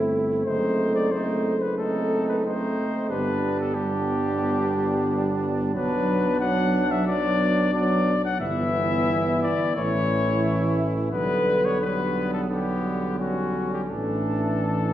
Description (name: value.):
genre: classical, brass quintet.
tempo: 90 BPM.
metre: 4/4.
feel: rubato.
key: G major.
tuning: A4 = 440 Hz.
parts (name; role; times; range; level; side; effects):
clear trumpet; melody; 0.0-14.9 s; E4 to F#5; -27 LUFS; left 4 dB; none.
clear trumpet; second line; 0.0-14.9 s; B3 to E4; -31 LUFS; right 3 dB; none.
clear French horn; accompaniment; 0.0-14.9 s; G3 to C4; -30 LUFS; left 1 dB; none.
warm euphonium; accompaniment; 0.0-14.9 s; D3 to A3; -27 LUFS; right 1 dB; none.
mellow tuba; bass; 0.0-14.9 s; F#1 to B1; -27 LUFS; right 1 dB; none.
room: wet recital hall reverb, RT60 1.7 s.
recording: heard from further back in the room.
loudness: -21 LUFS.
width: side -12 dB against mid.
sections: 0.0-14.9 A section.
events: none.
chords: 0.5 F#dim7; 3.1 G; 5.7 Bm; 8.4 Em/G; 9.8 A; 11.1 G/B; 13.9 Asus4.